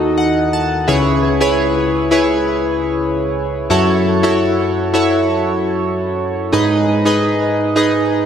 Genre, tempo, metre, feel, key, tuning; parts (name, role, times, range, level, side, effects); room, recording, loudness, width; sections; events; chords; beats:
pop; 85 BPM; 4/4; straight; C# minor; A4 = 440 Hz
chorused retro synth keys; solo; 0.0-8.3 s; C#2 to A5; -13 LUFS; equal; diffuse ambient delay
wet plate reverb, RT60 3.4 s; dreamy mix soaked in reverb, lossy compression artefacts; -13 LUFS; side -8 dB against mid
0.0-8.3 A section
synth keys fill 0.0-0.9
0.0 D#dim; 0.9 C#m7; 3.7 F#m7; 6.5 G#m
0.18 | 0.88 1.59 2.29 3.00 | 3.71 4.41 5.12 5.82 | 6.53 7.24 7.94